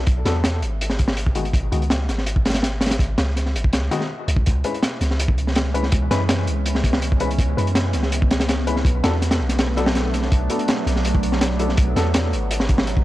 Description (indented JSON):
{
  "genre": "drum and bass, jungle",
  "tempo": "164 BPM",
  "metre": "4/4",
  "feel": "straight",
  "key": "C# minor",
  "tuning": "A4 = 439 Hz",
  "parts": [
    { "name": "long sustained 808-style bass", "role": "bass", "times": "0.0-13.0 s", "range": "G#1 to F#2", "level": "-22 LUFS", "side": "equal", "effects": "none" },
    { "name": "crunchy breakbeat drum kit", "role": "drums", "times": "0.1-13.0 s", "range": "hi-hat, kick drum, snare drum", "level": "-20 LUFS", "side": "equal", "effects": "none" },
    { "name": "dark baby grand piano", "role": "stabs", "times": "0.3-12.0 s", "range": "D#3 to B4", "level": "-27 LUFS", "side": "left 3 dB", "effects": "vintage 12-bit sampler grit, dub echo" },
    { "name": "warbly tape-like pad", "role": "sustained chords", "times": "5.2-13.0 s", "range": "E3 to D#4", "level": "-27 LUFS", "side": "right 2 dB", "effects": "chorus, built-in reverb" }
  ],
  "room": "light reverb, small room reverb",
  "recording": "dry, gritty hardware recording, cassette tape",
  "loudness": "-18 LUFS",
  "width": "side -16 dB against mid",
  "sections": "0.0-13.0 A section",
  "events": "none",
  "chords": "0.0 N.C.; 4.5 C#m7; 8.9 Bm7; 12.5 G#m7",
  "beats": "| 0.07 0.44 0.81 1.17 | 1.54 1.90 2.27 2.63 | 3.00 3.37 3.73 4.10 | 4.46 4.83 5.20 5.56 | 5.93 6.29 6.66 7.02 | 7.39 7.76 8.12 8.49 | 8.85 9.22 9.59 9.95 | 10.32 10.68 11.05 11.41 | 11.78 12.15 12.51 12.88"
}